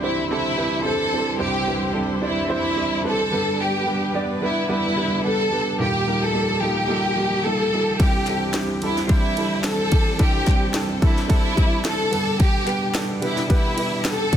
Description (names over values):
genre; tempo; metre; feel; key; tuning
piano-driven pop; 109 BPM; 4/4; swing 56% on 16ths; C major; A4 = 440 Hz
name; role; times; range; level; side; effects
warm studio violin section; melody; 0.0-14.4 s; E4 to A4; -23 LUFS; equal; none
warm baby grand piano; accompaniment; 0.0-14.4 s; C2 to D5; -24 LUFS; right 2 dB; none
warm studio string section; sustained chords; 0.0-14.4 s; B2 to C5; -32 LUFS; left 1 dB; none
house drum kit; drums; 8.0-14.4 s; kick drum, ride cymbal, snare drum; -20 LUFS; equal; none
group handclap; percussion; 8.3-14.2 s; none; -37 LUFS; left 8 dB; none
room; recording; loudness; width
light reverb, studio ambience; dense, heavily limited modern master; -19 LUFS; side -9 dB against mid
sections
0.0-14.4 A section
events
none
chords
0.0 Cadd9; 3.3 G; 5.8 Ebadd9; 8.0 Cadd9; 12.1 G